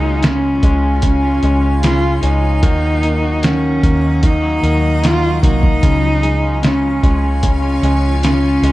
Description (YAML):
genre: pop ballad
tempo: 75 BPM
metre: 4/4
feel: straight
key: Db major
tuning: A4 = 439 Hz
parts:
  - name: warm cello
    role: melody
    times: 0.0-8.7 s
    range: Db4 to F4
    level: -17 LUFS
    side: equal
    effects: none
  - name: clear baby grand piano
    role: accompaniment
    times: 0.0-8.7 s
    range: Db3 to Bb3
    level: -20 LUFS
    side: equal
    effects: none
  - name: shimmering ambient pad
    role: sustained chords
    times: 0.0-8.7 s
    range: Gb3 to Bb5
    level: -26 LUFS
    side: left 1 dB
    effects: chorus, built-in reverb, phaser
  - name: electric guitar at the edge of break-up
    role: arpeggios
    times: 0.0-8.7 s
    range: Db3 to Gb4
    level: -27 LUFS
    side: left 2 dB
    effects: none
  - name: vintage muted fingered electric bass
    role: bass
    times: 0.0-8.7 s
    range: C2 to Eb2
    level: -17 LUFS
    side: equal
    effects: none
  - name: lo-fi sampler-style drum kit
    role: drums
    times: 0.2-8.7 s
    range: hi-hat, kick drum, snare drum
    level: -16 LUFS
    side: equal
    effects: overdrive
room: little or no reverb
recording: dark, warm production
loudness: -12 LUFS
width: side -17 dB against mid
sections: 0.0-8.7 A section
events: none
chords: 0.0 Db; 2.6 Ebm; 5.8 Db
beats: 0.23 1.03 1.83 | 2.63 3.43 4.23 5.03 | 5.83 6.63 7.43 8.23